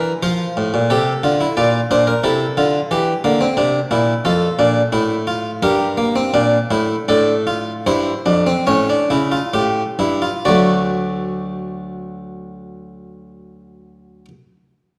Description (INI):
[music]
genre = classical, baroque-style 3-part fugue for harpsichord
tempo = 64-91 BPM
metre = 4/4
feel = straight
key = unclear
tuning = A4 = 440 Hz
[part]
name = harpsichord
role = solo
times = 0.0-14.3 s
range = D2 to D5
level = -18 LUFS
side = equal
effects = none
[sound]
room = wet recital hall reverb, RT60 1.7 s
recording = worn, warbling old tape, cassette tape, warbly pitch drift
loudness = -17 LUFS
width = mono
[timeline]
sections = 0.0-10.4 A section; 10.4-14.2 B section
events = slowing down 2.9-10.4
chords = 0.2 F; 1.6 Bb; 2.9 Edim; 4.3 Dm/F; 5.6 Edim/G; 7.1 Dm/A; 8.7 A7; 10.4 D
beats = 0.24 0.91 | 1.59 2.25 2.92 3.58 | 4.25 4.93 5.63 6.34 | 7.09 7.86 8.67 9.54 | 10.44 11.38 12.31 13.24